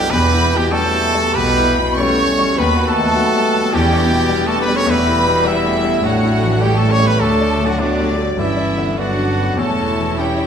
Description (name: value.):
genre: classical, romantic movement for piano and orchestra.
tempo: 94-106 BPM.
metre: 4/4.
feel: rubato.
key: unclear.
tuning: A4 = 440 Hz.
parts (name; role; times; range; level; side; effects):
clear studio violin section; melody; 0.0-10.5 s; D5 to C#6; -27 LUFS; left 2 dB; none.
warm grand piano; melody; 0.0-10.5 s; B1 to F#4; -20 LUFS; left 3 dB; none.
bright oboe; second line; 0.0-10.5 s; C#5 to G5; -29 LUFS; right 1 dB; none.
dark clarinet; second line; 0.0-10.5 s; A3 to A4; -26 LUFS; left 4 dB; none.
mellow hollow flute section; second line; 0.0-10.5 s; D5 to C#6; -24 LUFS; right 3 dB; none.
rich studio violin section; second line; 0.0-10.5 s; D5 to C#6; -26 LUFS; left 4 dB; none.
mellow bassoon; accompaniment; 0.0-10.5 s; F#3 to C#4; -29 LUFS; right 4 dB; none.
rich studio viola section; accompaniment; 0.0-10.5 s; G3 to E4; -25 LUFS; right 2 dB; none.
dark French horn section; sustained chords; 0.0-10.5 s; D3 to C#4; -24 LUFS; left 2 dB; none.
brilliant trumpet; stabs; 0.0-10.5 s; D4 to C#5; -20 LUFS; right 2 dB; none.
rich studio cello section; bass; 0.1-10.5 s; D#2 to D3; -26 LUFS; right 1 dB; none.
rich studio double bass section; bass; 0.1-10.5 s; E1 to D#2; -23 LUFS; right 2 dB; none.
room: wet recital hall reverb, RT60 1.4 s.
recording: minimal, uncompressed stereo recording.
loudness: -13 LUFS.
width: side -7 dB against mid.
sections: 0.0-10.5 A section.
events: none.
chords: 0.1 Em; 2.6 B7/D#; 3.7 Em7; 4.9 Em; 6.0 A7; 7.2 D; 8.4 Gmaj7; 9.6 C#dim/E.